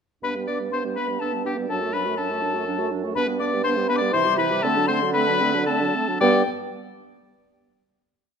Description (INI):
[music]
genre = quick classical-period movement for wind quintet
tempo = 109-125 BPM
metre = 3/4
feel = rubato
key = G major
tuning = A4 = 437 Hz
[part]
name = silver concert flute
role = melody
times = 0.2-6.5 s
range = G5 to D6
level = -26 LUFS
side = left 9 dB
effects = none
[part]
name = bright oboe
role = second line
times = 0.2-6.4 s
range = G4 to D5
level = -26 LUFS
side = left 3 dB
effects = none
[part]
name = clear French horn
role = accompaniment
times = 0.2-6.4 s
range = E3 to B3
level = -30 LUFS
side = equal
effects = none
[part]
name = mellow clarinet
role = accompaniment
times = 0.2-6.4 s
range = B3 to G4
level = -28 LUFS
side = right 8 dB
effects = none
[part]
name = mellow bassoon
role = bass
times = 0.2-6.4 s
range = F#2 to D3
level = -26 LUFS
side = right 3 dB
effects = none
[sound]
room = moderate recital hall reverb, RT60 1.6 s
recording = none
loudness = -20 LUFS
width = side -6 dB against mid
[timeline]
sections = 0.2-6.2 A section; 6.2-7.8 final chord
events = none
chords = 0.2 G; 1.7 D/F#; 3.2 G; 4.1 C; 4.6 D7; 6.2 G